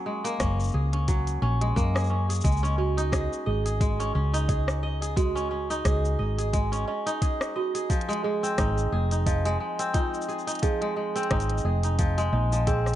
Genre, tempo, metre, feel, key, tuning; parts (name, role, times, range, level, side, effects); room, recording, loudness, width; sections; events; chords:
folktronica; 88 BPM; 4/4; swing 56% on 16ths; Ab mixolydian; A4 = 441 Hz
kora; arpeggios; 0.0-13.0 s; F3 to Eb5; -29 LUFS; left 1 dB; digital delay
organic electronic drum kit; drums; 0.2-13.0 s; cabasa, hi-hat, rim click; -34 LUFS; left 1 dB
hollow-body short-scale fingered electric bass; bass; 0.4-13.0 s; F1 to Gb2; -26 LUFS; equal
electronic kick drum; drums; 0.4-12.8 s; -26 LUFS; equal
celesta; second line; 2.8-13.0 s; F4 to Eb5; -32 LUFS; right 6 dB; digital delay
light reverb; dark, warm production, nothing above 10.7 kHz; -24 LUFS; side -12 dB against mid
0.0-13.0 A section
0.0 Gbadd9; 2.4 Dbsus2; 7.9 Ab6